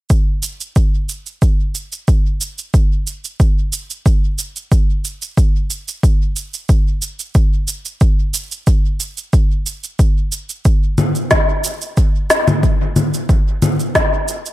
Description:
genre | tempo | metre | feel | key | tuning
downtempo | 91 BPM | 4/4 | straight | none | none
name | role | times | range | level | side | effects
electronic kick drum | drums | 0.1-14.1 s | none | -13 LUFS | equal | none
electronic shaker, congas and snare drum | drums | 0.1-14.5 s | none | -18 LUFS | equal | dub echo
room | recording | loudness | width
light reverb | echo-heavy mix | -14 LUFS | side -16 dB against mid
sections
0.1-14.5 A section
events
none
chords
none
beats
| 0.10 0.76 1.42 2.08 | 2.74 3.40 4.06 4.72 | 5.38 6.04 6.70 7.36 | 8.01 8.67 9.33 9.99 | 10.65 11.31 11.97 12.63 | 13.29 13.95

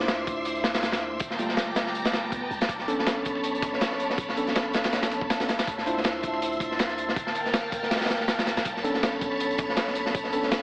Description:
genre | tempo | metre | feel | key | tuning
drum and bass, jungle | 161 BPM | 4/4 | swing 55% on 16ths | B minor | A4 = 440 Hz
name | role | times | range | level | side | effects
soft string machine | sustained chords | 0.0-10.6 s | Bb4 to C6 | -31 LUFS | equal | ensemble chorus
tine electric piano | stabs | 0.0-10.6 s | G3 to C5 | -31 LUFS | equal | dub echo
long sustained 808-style bass | bass | 0.0-10.6 s | G1 to D2 | -44 LUFS | equal | none
crunchy breakbeat drum kit | drums | 0.0-10.6 s | hi-hat, kick drum, snare drum | -27 LUFS | equal | none
backwards swelling texture | texture | 0.0-10.6 s | A5 to D6 | -37 LUFS | equal | built-in reverb
swell | sound effects | 2.0-2.7 s | none | -38 LUFS | right 1 dB | none
dusty soul sampler-style drum kit | drums | 2.7-10.6 s | hi-hat, snare drum | -37 LUFS | equal | none
room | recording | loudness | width
moderate digital room reverb, RT60 1.1 s | heavily compressed radio sound, multiband compression, AM radio sound | -24 LUFS | side -24 dB against mid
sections
0.0-10.6 A section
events
swell 2.0-2.7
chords
0.0 Dm9; 1.2 Gm9; 2.7 Bm9; 5.7 Dm9; 7.2 Gm9; 8.7 Bm9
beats
0.09 0.46 0.83 | 1.20 1.58 1.95 2.32 | 2.69 3.07 3.44 3.81 | 4.18 4.56 4.93 5.30 | 5.67 6.05 6.42 6.79 | 7.17 7.54 7.91 8.28 | 8.66 9.03 9.40 9.77 | 10.15 10.52

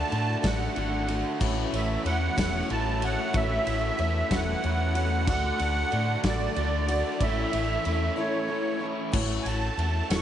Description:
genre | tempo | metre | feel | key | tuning
folk rock and heartland rock | 62 BPM (dotted quarters) | 6/8 | straight | A major | A4 = 440 Hz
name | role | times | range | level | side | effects
musette accordion | melody | 0.0-10.2 s | C#5 to C#6 | -30 LUFS | right 2 dB | none
clear upright piano | accompaniment | 0.0-10.2 s | E4 to E5 | -40 LUFS | right 6 dB | none
picked twelve-string acoustic guitar | accompaniment | 0.0-10.2 s | A2 to F#4 | -35 LUFS | left 5 dB | analog chorus, slapback echo
bright tonewheel organ | sustained chords | 0.0-10.2 s | D4 to D6 | -41 LUFS | equal | none
raw garage guitar | riff | 0.0-9.1 s | A2 to F#4 | -32 LUFS | right 1 dB | overdrive
fingered electric bass | bass | 0.1-10.2 s | E1 to A2 | -29 LUFS | equal | none
loose indie drum kit | drums | 0.1-10.2 s | crash cymbal, kick drum, ride cymbal, snare drum | -32 LUFS | equal | none
room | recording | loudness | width
moderate lush hall reverb, RT60 2.6 s | big arena sound, nothing above 10.6 kHz | -24 LUFS | side -10 dB against mid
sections
0.0-9.1 A section; 9.1-10.2 B section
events
accordion solo 9.1-10.2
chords
0.0 D; 1.4 A6; 5.3 D; 7.2 A; 9.1 A6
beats
0.44 | 1.41 2.37 | 3.34 4.31 | 5.28 6.24 | 7.21 8.18 | 9.14 10.11

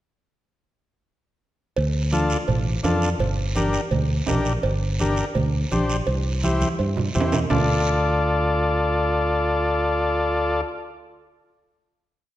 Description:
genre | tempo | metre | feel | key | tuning
latin, cumbia | 168 BPM | 4/4 | straight | D minor | A4 = 440 Hz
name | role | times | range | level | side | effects
fingered electric bass | bass | 1.8-10.6 s | G1 to G2 | -24 LUFS | equal | none
cowbell and timbales | percussion | 1.8-7.6 s | none | -30 LUFS | right 4 dB | none
guiro | percussion | 1.8-7.6 s | none | -35 LUFS | right 4 dB | none
combo organ | accompaniment | 2.1-10.6 s | D4 to D5 | -23 LUFS | left 2 dB | none
congas | percussion | 2.1-7.6 s | none | -28 LUFS | right 3 dB | none
room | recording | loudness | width
wet recital hall reverb, RT60 1.5 s | none | -20 LUFS | side -13 dB against mid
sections
1.8-7.5 groove; 7.5-10.4 final chord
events
drum fill 6.6-7.5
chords
1.8 Dm; 3.2 Gm; 6.1 C; 7.5 Dm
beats
| 1.77 2.12 2.48 2.84 | 3.20 3.56 3.92 4.28 | 4.63 4.99 5.35 5.71 | 6.07 6.43 6.79 7.15 | 7.50 7.86 8.22 8.58 | 8.93 9.29 9.65 10.01

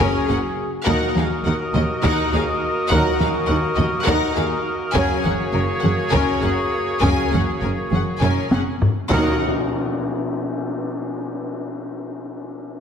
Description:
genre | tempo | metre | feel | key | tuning
cinematic, epic orchestral film score | 205 BPM (eighths) | 7/8 | straight | Eb minor | A4 = 440 Hz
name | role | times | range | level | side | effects
clear symphonic violin section | melody | 0.0-9.4 s | Eb5 to Ab5 | -28 LUFS | left 3 dB | none
warm symphonic violin section | second line | 0.0-9.5 s | Gb4 to Bb4 | -28 LUFS | left 4 dB | none
dark symphonic viola section | accompaniment | 0.0-9.5 s | Db4 to Eb4 | -26 LUFS | left 1 dB | none
dark French horn section | sustained chords | 0.0-9.4 s | Bb3 to Gb4 | -31 LUFS | equal | none
warm trombone section | sustained chords | 0.0-9.4 s | Bb2 to Gb3 | -32 LUFS | right 2 dB | none
warm woodwind section | sustained chords | 0.0-9.4 s | Bb3 to Eb5 | -25 LUFS | left 1 dB | none
warm trumpet section | stabs | 0.0-9.4 s | Ab4 to Bb4 | -29 LUFS | left 1 dB | none
clear symphonic double bass section | bass | 0.0-9.4 s | Gb1 to Eb2 | -26 LUFS | right 3 dB | none
rich symphonic cello section | bass | 0.0-9.4 s | Eb2 to Gb2 | -26 LUFS | right 2 dB | none
taiko ensemble | drums | 0.9-10.3 s | none | -24 LUFS | left 1 dB | none
tam-tam | percussion | 9.1-11.4 s | none | -25 LUFS | left 2 dB | none
room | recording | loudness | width
wet scoring stage reverb, RT60 1.5 s | heavily compressed radio sound | -18 LUFS | side -7 dB against mid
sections
0.0-9.1 A section; 9.1-11.2 B section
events
drum fill 8.2-9.1; band accent 9.1-9.7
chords
0.0 Gbadd9; 0.9 Ebm; 5.0 Gbadd9; 9.1 Ebm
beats
0.00 0.29 0.58 | 0.87 1.17 1.46 1.75 2.04 2.33 2.63 | 2.92 3.21 3.50 3.79 4.08 4.37 4.67 | 4.96 5.25 5.55 5.84 6.13 6.43 6.73 | 7.03 7.33 7.63 7.93 8.23 8.53 8.83 | 9.12 9.42 9.71 10.01 10.30 10.59 10.89

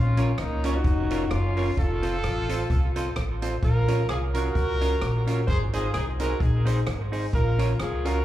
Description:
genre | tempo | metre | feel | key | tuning
ska | 130 BPM | 4/4 | swing 55% on 8ths | Bb minor | A4 = 440 Hz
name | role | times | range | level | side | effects
warm horn section | melody | 0.0-8.2 s | Bb3 to C5 | -29 LUFS | equal | tape echo, slapback echo
upright bass | bass | 0.0-8.2 s | F1 to Db2 | -25 LUFS | equal | none
semi-hollow electric guitar | accompaniment | 0.2-8.2 s | C4 to Db5 | -32 LUFS | right 2 dB | tape echo, slapback echo
swinging big-band drum kit | drums | 0.2-8.1 s | hi-hat, kick drum, rim click | -30 LUFS | equal | none
room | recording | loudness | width
studio reverb | live gig heard through the venue's PA, club reverb | -22 LUFS | side -13 dB against mid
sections
0.0-8.2 A section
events
none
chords
0.0 Bbm; 1.8 F; 3.6 Bbm; 5.5 Ab; 7.3 Bbm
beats
0.38 0.85 1.31 | 1.77 2.24 2.70 3.16 | 3.63 4.09 4.55 5.02 | 5.48 5.94 6.41 6.87 | 7.33 7.79

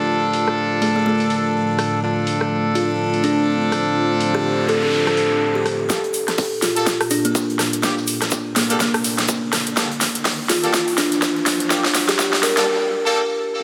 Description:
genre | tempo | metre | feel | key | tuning
bass house | 124 BPM | 4/4 | swing 58% on 16ths | G minor | A4 = 441 Hz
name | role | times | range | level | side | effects
dark analog pad | sustained chords | 0.0-12.6 s | A3 to D5 | -29 LUFS | equal | chorus, phaser, sidechain pumping
clear horn section | stabs | 0.0-13.2 s | F3 to A4 | -25 LUFS | equal | sidechain pumping, digital delay
big-room dance drum kit | drums | 0.3-12.7 s | hi-hat, rim click, snare drum | -24 LUFS | equal | overdrive, high-pass filter on snare, low-pass filter on snare, high-pass filter on hats, low-pass filter on hats
buzzing kalimba | melody | 0.8-12.6 s | A3 to Bb4 | -24 LUFS | equal | digital delay
noise sweep and riser | sound effects | 4.5-12.7 s | none | -32 LUFS | equal | none
electronic kick drum | drums | 5.9-12.3 s | none | -25 LUFS | equal | high-pass filter on kick, high-pass filter on room
open jazz drum kit | drums | 5.9-12.6 s | hi-hat, shaker, snare drum | -32 LUFS | equal | high-pass filter on hats, high-pass filter on snare, high-pass filter on perc, high-pass filter on room
room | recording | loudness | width
moderate lush hall reverb, RT60 2.2 s | high-pass filter | -19 LUFS | mono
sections
0.0-5.9 A section; 5.9-13.6 B section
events
filter sweep on analog synth pad 0.0-5.9, 5.9-13.6; noise sweep 4.5-5.9; build-up 5.9-13.6; drum fill 5.9-12.7; riser 5.9-12.7; break 12.7-13.6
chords
0.0 Dm; 5.9 Gmadd9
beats
| 0.09 0.58 1.06 1.54 | 2.03 2.51 3.00 3.48 | 3.96 4.45 4.93 5.42 | 5.90 6.38 6.87 7.35 | 7.83 8.32 8.80 9.29 | 9.77 10.25 10.74 11.22 | 11.71 12.19 12.67 13.16

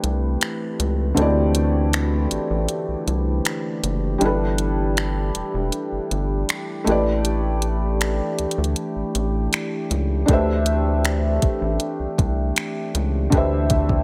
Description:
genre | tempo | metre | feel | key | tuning
contemporary R&B | 79 BPM | 4/4 | straight | unclear | A4 = 440 Hz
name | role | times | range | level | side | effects
felt-muted upright piano | accompaniment | 0.0-14.0 s | D3 to E5 | -26 LUFS | equal | none
mellow brass ensemble | sustained chords | 0.0-14.0 s | E3 to B4 | -32 LUFS | equal | none
rubbery square bass | bass | 0.0-14.0 s | E1 to D2 | -25 LUFS | equal | none
smooth R&B drum kit | drums | 0.0-14.0 s | finger snaps, hi-hat, kick drum | -25 LUFS | equal | none
room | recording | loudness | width
digital ambience | none | -22 LUFS | mono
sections
0.0-14.0 A section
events
break 0.0-10.3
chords
0.0 D13sus4; 4.2 G69; 6.9 A9sus4; 10.3 D13sus4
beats
0.41 | 1.17 1.93 2.69 3.45 | 4.21 4.97 5.73 6.49 | 7.25 8.01 8.77 9.53 | 10.29 11.04 11.80 12.56 | 13.32

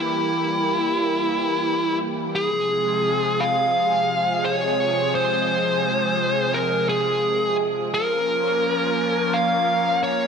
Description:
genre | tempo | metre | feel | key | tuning
synthwave | 86 BPM | 4/4 | straight | F minor | A4 = 440 Hz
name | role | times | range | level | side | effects
fuzz lead guitar | melody | 0.0-10.3 s | E4 to F5 | -21 LUFS | equal | distortion, digital delay
lush unison pad | sustained chords | 0.0-10.3 s | C3 to Bb4 | -24 LUFS | equal | chorus, phaser
room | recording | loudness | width
wet plate reverb, RT60 2.6 s | bright 1980s-style digital production | -19 LUFS | side -6 dB against mid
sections
0.0-2.4 A section; 2.4-10.3 B section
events
none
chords
0.0 C (rootless); 2.4 Fm; 7.9 Bbm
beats
0.26 0.96 1.66 | 2.36 3.05 3.75 4.45 | 5.15 5.84 6.54 7.24 | 7.94 8.63 9.33 10.03

